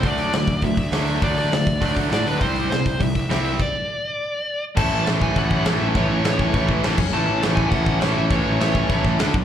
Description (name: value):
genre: punk rock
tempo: 203 BPM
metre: 4/4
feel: straight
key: D mixolydian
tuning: A4 = 440 Hz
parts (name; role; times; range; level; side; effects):
- dark smooth lead guitar; melody; 0.0-9.0 s; B4 to A5; -27 LUFS; left 1 dB; overdrive, tape echo
- biting overdriven guitar; riff; 0.0-9.3 s; A2 to A4; -27 LUFS; left 11 dB; slapback echo
- overdriven electric guitar; riff; 0.0-9.3 s; A2 to D4; -25 LUFS; right 9 dB; slapback echo
- fuzz picked electric bass; bass; 0.0-9.4 s; F#1 to D3; -23 LUFS; equal; overdrive
- big rock drum kit; drums; 0.0-9.4 s; crash cymbal, hi-hat, kick drum, snare drum; -23 LUFS; equal; none
- high-gain distorted guitar; riff; 4.8-9.2 s; A2 to A3; -31 LUFS; left 2 dB; none
room: small room reverb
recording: live gig heard through the venue's PA, club reverb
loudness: -18 LUFS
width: side -9 dB against mid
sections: 0.0-4.8 A section; 4.8-9.4 B section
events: stop 3.6-4.8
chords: 0.0 D; 2.4 C; 3.6 N.C.; 4.8 A; 7.0 N.C.; 7.1 A; 9.2 D5